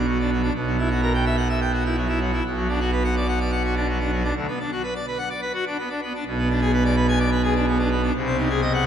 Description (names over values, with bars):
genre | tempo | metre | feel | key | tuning
classical, organ toccata | 126 BPM | 4/4 | straight | B minor | A4 = 440 Hz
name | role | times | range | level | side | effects
pipe organ, full organ | solo | 0.0-8.9 s | B1 to G#5 | -20 LUFS | equal | none
room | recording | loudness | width
wet cathedral reverb, RT60 4.2 s | none | -20 LUFS | side -9 dB against mid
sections
0.0-8.9 A section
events
none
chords
0.0 Bm; 0.5 F#7b9/B; 2.5 Bm; 4.4 Bm/D; 6.2 G#dim/B; 8.1 G#7/B#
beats
0.07 | 0.54 1.02 1.50 1.97 | 2.45 2.93 3.41 3.88 | 4.36 4.83 5.31 5.78 | 6.25 6.72 7.20 7.67 | 8.14 8.62